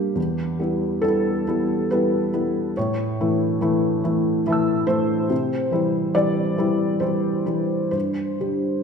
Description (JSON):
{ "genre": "neoclassical minimalist piano", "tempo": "69 BPM", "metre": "3/4", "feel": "uneven beats, rubato", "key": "E minor", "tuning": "A4 = 441 Hz", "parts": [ { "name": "felt-muted upright piano", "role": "solo", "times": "0.0-8.8 s", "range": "E2 to E6", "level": "-20 LUFS", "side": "equal", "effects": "none" } ], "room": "wet scoring stage reverb, RT60 1.8 s", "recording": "recorded in a church or concert hall", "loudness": "-20 LUFS", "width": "side -6 dB against mid", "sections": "0.0-8.8 A section", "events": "none", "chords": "0.2 Em; 2.8 A; 5.3 C; 7.9 G5" }